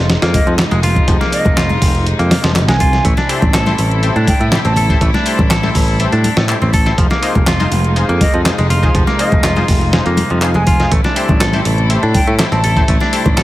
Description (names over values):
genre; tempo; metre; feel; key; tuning
breakbeat, breaks; 122 BPM; 4/4; straight; A phrygian; A4 = 440 Hz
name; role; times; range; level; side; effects
clear studio string section; sustained chords; 0.0-13.4 s; C3 to E4; -22 LUFS; equal; sidechain pumping
clean electric guitar; riff; 0.0-13.4 s; F3 to A4; -20 LUFS; left 1 dB; dub echo
picked electric bass; bass; 0.0-13.4 s; F1 to A2; -15 LUFS; equal; none
dusty soul sampler-style drum kit; drums; 0.1-13.4 s; hi-hat, kick drum, snare drum; -15 LUFS; equal; none
house drum kit; drums; 0.1-13.4 s; handclaps, hi-hat; -25 LUFS; equal; none
silver concert flute; melody; 0.3-5.0, 8.2-12.9 s; Eb5 to A5; -22 LUFS; right 1 dB; AM radio sound, dub echo
congas; percussion; 0.3-13.4 s; none; -23 LUFS; left 3 dB; none
band-passed chord stab; stabs; 3.3-13.2 s; Eb4 to C5; -22 LUFS; left 3 dB; chorus, cassette tape, dub echo
room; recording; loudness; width
light reverb, digital ambience; heavily compressed radio sound; -11 LUFS; side -15 dB against mid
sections
0.0-13.4 A section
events
none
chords
0.0 Fm7; 3.0 Am7; 7.0 Fm7; 10.9 Am7